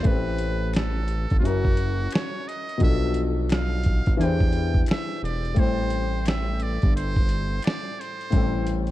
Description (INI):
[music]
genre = lo-fi hip hop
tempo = 87 BPM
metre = 4/4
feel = swing 64% on 16ths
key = A minor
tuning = A4 = 444 Hz
[part]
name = trumpet with metal mute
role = melody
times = 0.0-8.8 s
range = F4 to G5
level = -33 LUFS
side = right 3 dB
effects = none
[part]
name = felt-muted upright piano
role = accompaniment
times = 0.0-8.9 s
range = A2 to B#4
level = -28 LUFS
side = left 4 dB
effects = none
[part]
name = fat analog bass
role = bass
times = 0.0-8.9 s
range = E1 to E2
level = -26 LUFS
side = equal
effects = none
[part]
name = dusty soul sampler-style drum kit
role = drums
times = 0.0-8.9 s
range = hi-hat, kick drum, snare drum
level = -23 LUFS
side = equal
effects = none
[part]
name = finger snaps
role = percussion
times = 0.7-7.8 s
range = none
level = -45 LUFS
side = left 7 dB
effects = none
[sound]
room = small room ambience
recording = dark, warm production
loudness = -21 LUFS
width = side -15 dB against mid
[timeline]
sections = 0.0-8.9 A section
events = none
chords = 0.1 Am9; 1.4 F#7; 2.8 Bm7b5; 4.2 E7alt; 5.6 Am7